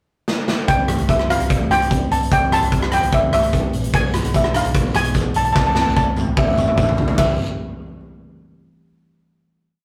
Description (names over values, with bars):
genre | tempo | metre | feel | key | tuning
calypso | 148 BPM | 4/4 | straight | C major | A4 = 440 Hz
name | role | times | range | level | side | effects
big rock drum kit | drums | 0.3-7.3 s | hi-hat, kick drum, ride cymbal, rim click, snare drum, toms | -22 LUFS | equal | none
steel pan | melody | 0.7-7.4 s | E5 to A5 | -22 LUFS | equal | none
hollow-body short-scale fingered electric bass | bass | 0.7-7.4 s | G1 to C2 | -26 LUFS | equal | none
steel pan | accompaniment | 0.8-7.4 s | E3 to D4 | -28 LUFS | equal | none
guiro | percussion | 3.9-7.4 s | none | -40 LUFS | equal | none
room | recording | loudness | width
moderate studio reverb, RT60 0.7 s | rough rehearsal-room recording, warm saturation | -18 LUFS | mono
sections
0.0-0.7 pickup bar; 0.7-7.2 verse; 7.2-8.8 final chord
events
drum fill 0.3-0.7, 5.6-7.2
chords
0.0 N.C.; 0.7 C; 3.9 E/B; 5.6 Am/C; 7.2 C